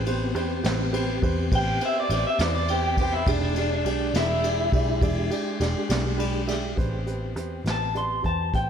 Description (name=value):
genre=slow blues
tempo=68 BPM (dotted quarters)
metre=12/8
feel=straight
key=A minor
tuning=A4 = 441 Hz
part: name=mellow tonewheel organ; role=sustained chords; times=0.0-8.7 s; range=G#3 to G#4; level=-32 LUFS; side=left 2 dB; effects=slow rotary speaker, chorus vibrato
part: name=vintage muted picked electric bass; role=bass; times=0.0-8.7 s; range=E1 to E2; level=-28 LUFS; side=equal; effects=none
part: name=warm upright piano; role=accompaniment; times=0.1-8.7 s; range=G4 to B5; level=-32 LUFS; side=right 6 dB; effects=slapback echo
part: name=vintage brush drum kit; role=drums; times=0.1-8.7 s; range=hi-hat, kick drum, ride cymbal, snare drum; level=-28 LUFS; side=equal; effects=none
part: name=electric guitar through a small old amp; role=melody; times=1.6-8.7 s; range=D4 to C6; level=-26 LUFS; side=equal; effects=slapback echo
room=moderate lush hall reverb, RT60 1.8 s, small room ambience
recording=big arena sound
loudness=-22 LUFS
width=side -8 dB against mid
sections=0.0-6.8 A section; 6.8-8.7 B section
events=clean electric guitar solo 0.0-6.8; upright piano fill 5.9-6.8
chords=0.0 Am9; 3.3 E7#9; 6.8 Am9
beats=0.64 1.51 2.39 | 3.27 4.14 5.02 5.90 | 6.77 7.65 8.53